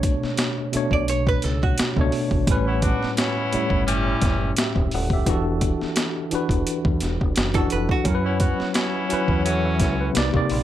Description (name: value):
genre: R&B, neo-soul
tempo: 86 BPM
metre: 4/4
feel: swing 55% on 16ths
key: unclear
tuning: A4 = 440 Hz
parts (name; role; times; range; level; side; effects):
- tine electric piano; accompaniment; 0.0-10.6 s; A2 to F#5; -24 LUFS; left 1 dB; overdrive, fast stereo tremolo
- deep dub fingered electric bass; bass; 0.0-10.6 s; D#1 to F#2; -25 LUFS; equal; none
- boom bap sampler-style drum kit; drums; 0.0-10.6 s; hi-hat, kick drum, snare drum; -23 LUFS; equal; overdrive
- archtop guitar, miked and amplified; second line; 0.9-2.4, 7.5-8.2 s; F#4 to D5; -27 LUFS; right 6 dB; none
- bright horn section; stabs; 2.7-10.1 s; E3 to F#4; -26 LUFS; equal; none
room: light reverb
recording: none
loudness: -19 LUFS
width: side -12 dB against mid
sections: 0.0-10.6 A section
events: none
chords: 0.0 Bm9; 2.5 A9; 5.3 E9sus4; 8.1 F#7sus4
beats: 0.38 1.08 1.77 | 2.47 3.17 3.87 4.56 | 5.26 5.96 6.66 7.36 | 8.05 8.75 9.45 10.15